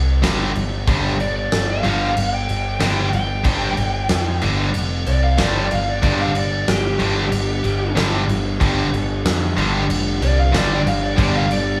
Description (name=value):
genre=hard rock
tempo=93 BPM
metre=4/4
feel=straight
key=unclear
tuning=A4 = 440 Hz
part: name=growling picked electric bass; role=bass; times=0.0-11.8 s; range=F1 to F2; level=-24 LUFS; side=equal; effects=overdrive
part: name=scooped high-gain guitar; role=riff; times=0.2-11.4 s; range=G2 to G3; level=-27 LUFS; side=equal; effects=distortion
part: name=tight distorted guitar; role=riff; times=0.2-11.4 s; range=G2 to G3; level=-27 LUFS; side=equal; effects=distortion
part: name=big rock drum kit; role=drums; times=0.2-11.7 s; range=crash cymbal, kick drum, snare drum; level=-25 LUFS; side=equal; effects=none
part: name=smooth overdriven lead guitar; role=melody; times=1.2-11.8 s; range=G4 to G5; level=-26 LUFS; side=equal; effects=none
part: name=overdriven electric guitar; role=riff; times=6.0-11.8 s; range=G2 to G3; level=-29 LUFS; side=equal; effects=none
room=moderate large studio reverb, RT60 0.8 s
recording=band playing live in one room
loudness=-19 LUFS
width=mono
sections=0.0-11.8 A section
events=lead electric guitar solo 0.0-11.8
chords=0.0 G5